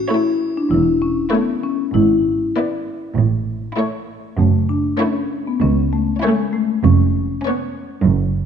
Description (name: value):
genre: cinematic, playful, whimsical film cue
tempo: 98 BPM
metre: 4/4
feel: straight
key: A major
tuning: A4 = 440 Hz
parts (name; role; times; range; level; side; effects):
- marimba with medium mallets; melody; 0.0-8.5 s; G#3 to E4; -19 LUFS; left 5 dB; none
- rich chamber violin section; melody; 0.1-7.9 s; C#5 to D5; -29 LUFS; left 2 dB; none
- rich chamber violin section; second line; 0.1-7.9 s; C#4 to E4; -29 LUFS; left 2 dB; none
- rich chamber viola section; accompaniment; 0.1-7.9 s; A3 to B3; -23 LUFS; right 2 dB; none
- rich chamber double bass section; bass; 0.7-8.5 s; E1 to C#2; -21 LUFS; right 5 dB; none
- warm chamber cello section; bass; 0.7-8.5 s; C#2 to A2; -19 LUFS; right 4 dB; none
room: moderate concert hall reverb, RT60 2.0 s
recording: nothing above 10.6 kHz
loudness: -16 LUFS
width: side -8 dB against mid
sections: 0.0-8.5 A section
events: none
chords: 0.0 A; 1.9 E7/G#; 3.2 A; 4.4 F#m7; 6.8 C#7/E#